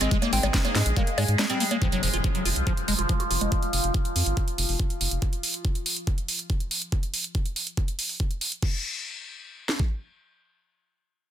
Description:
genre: psychedelic trance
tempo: 141 BPM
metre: 4/4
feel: straight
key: F minor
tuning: A4 = 439 Hz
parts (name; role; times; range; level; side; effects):
- oud; melody; 0.0-1.7 s; G3 to C4; -32 LUFS; left 1 dB; phaser, vintage 12-bit sampler grit, sidechain pumping, dub echo
- overtone-sweeping drone; sustained chords; 0.0-5.2 s; F3 to Ab4; -32 LUFS; equal; chorus, built-in reverb, sidechain pumping
- liquid acid bass; riff; 0.0-3.5 s; F3 to Gb4; -29 LUFS; equal; phaser, auto-pan, sidechain pumping, digital delay
- round analog bass; bass; 0.0-5.2 s; F1 to Ab2; -26 LUFS; equal; tube saturation
- drum and bass drum kit; drums; 0.0-8.7 s; bongos, crash cymbal, hi-hat, snare drum; -28 LUFS; right 1 dB; overdrive
- drum and bass drum kit; drums; 0.1-9.9 s; kick drum, snare drum; -25 LUFS; equal; overdrive
- formant-sweep wobble bass; second line; 0.2-0.8 s; Eb4; -41 LUFS; right 3 dB; none
- impact; sound effects; 1.8-3.5 s; none; -36 LUFS; equal; none
room: light reverb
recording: dense, heavily limited modern master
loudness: -24 LUFS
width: side -10 dB against mid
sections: 0.0-1.8 A section; 1.8-8.6 B section; 8.6-11.3 C section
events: drop 0.0-1.8; impact 1.8-3.5; filter sweep on acid bass 1.8-3.5; filter sweep on synth drone 1.8-5.2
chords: 0.0 Ab5; 1.8 F5; 8.6 N.C.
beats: | 0.11 0.54 0.96 1.39 | 1.82 2.24 2.67 3.09 | 3.52 3.94 4.37 4.79 | 5.22 5.65 6.07 6.50 | 6.92 7.35 7.77 8.20 | 8.62 9.05 9.48

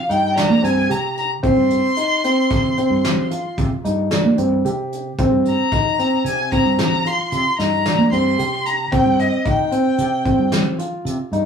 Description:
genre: progressive instrumental, band music in an uneven meter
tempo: 112 BPM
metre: 7/4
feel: straight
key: C minor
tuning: A4 = 440 Hz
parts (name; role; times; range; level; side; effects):
- warm violin; melody; 0.0-10.5 s; Eb5 to C6; -21 LUFS; left 2 dB; none
- warm grand piano; arpeggios; 0.1-11.5 s; C4 to G4; -19 LUFS; equal; none
- fretless electric bass; bass; 0.1-11.5 s; G2 to Bb3; -22 LUFS; right 2 dB; none
- soft brush drum kit; drums; 0.1-11.4 s; hi-hat, kick drum, snare drum; -23 LUFS; equal; none
room: wet small room reverb, RT60 0.6 s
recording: rough rehearsal-room recording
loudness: -16 LUFS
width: side -7 dB against mid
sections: 0.0-11.5 A section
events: none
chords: 0.0 Cm7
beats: 0.36 0.90 | 1.43 1.97 2.50 3.04 3.58 4.11 4.64 | 5.18 5.71 6.25 6.78 7.32 7.85 8.39 | 8.92 9.46 9.99 10.52 11.06

